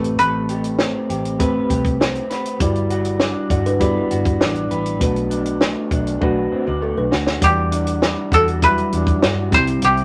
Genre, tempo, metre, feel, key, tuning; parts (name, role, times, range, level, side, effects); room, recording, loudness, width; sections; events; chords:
indie pop, bedroom pop; 100 BPM; 4/4; straight; E minor; A4 = 440 Hz
koto; melody; 0.0-2.3, 7.4-10.0 s; G4 to C5; -19 LUFS; equal
bright reed electric piano; accompaniment; 0.0-10.0 s; F#3 to F#5; -26 LUFS; equal
electric guitar through a small old amp; accompaniment; 0.0-10.0 s; B2 to B4; -27 LUFS; equal; vibrato effect
vintage muted fingered electric bass; bass; 0.0-10.0 s; G1 to G2; -27 LUFS; equal
compact cocktail drum kit; drums; 0.0-10.0 s; hi-hat, kick drum, snare drum; -22 LUFS; equal
kalimba; second line; 3.5-7.4 s; G3 to D5; -29 LUFS; equal
moderate club reverb, RT60 0.8 s; -19 LUFS; mono
0.0-7.4 A section; 7.4-10.0 B section
drum fill 6.2-7.4
0.0 Am9; 2.6 Em9/G; 5.0 Bm7; 7.4 Em9; 9.5 C